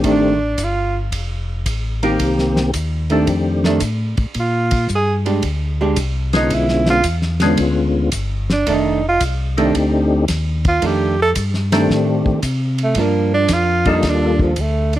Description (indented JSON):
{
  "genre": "soul jazz organ trio",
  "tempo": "112 BPM",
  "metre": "4/4",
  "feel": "swing 68% on 8ths",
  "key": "F mixolydian",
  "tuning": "A4 = 440 Hz",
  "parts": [
    { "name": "percussive tonewheel organ", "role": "melody", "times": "0.0-14.5 s", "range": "D3 to A4", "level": "-17 LUFS", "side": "left 2 dB", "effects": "slow rotary speaker, chorus vibrato" },
    { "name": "archtop guitar, miked and amplified", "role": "accompaniment", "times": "0.0-14.5 s", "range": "Eb3 to G4", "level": "-20 LUFS", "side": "right 4 dB", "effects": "none" },
    { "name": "mellow tonewheel organ", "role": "bass", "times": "0.0-15.0 s", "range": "F1 to C3", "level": "-20 LUFS", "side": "left 1 dB", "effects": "slow rotary speaker" },
    { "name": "warm soul drum kit", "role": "drums", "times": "0.0-15.0 s", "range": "hi-hat, kick drum, ride cymbal, snare drum", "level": "-24 LUFS", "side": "equal", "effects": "none" },
    { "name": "breathy tenor saxophone", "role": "melody", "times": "0.1-1.0, 4.4-15.0 s", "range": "F3 to A4", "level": "-18 LUFS", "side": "right 2 dB", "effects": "slapback echo" }
  ],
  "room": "studio ambience",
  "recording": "dry, close 1970s-style studio recording",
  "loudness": "-15 LUFS",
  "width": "side -13 dB against mid",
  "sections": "0.0-15.0 A section",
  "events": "tenor saxophone solo 0.0-15.0",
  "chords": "0.0 F13; 2.2 Cm7; 3.3 F13; 4.4 Bb13; 6.5 Bdim7; 8.7 F13; 13.0 Gm7",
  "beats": "| 0.05 0.59 1.13 1.67 | 2.21 2.75 3.28 3.82 | 4.36 4.90 5.44 5.98 | 6.51 7.05 7.59 8.13 | 8.67 9.20 9.74 10.28 | 10.82 11.35 11.89 12.43 | 12.97 13.50 14.04 14.58"
}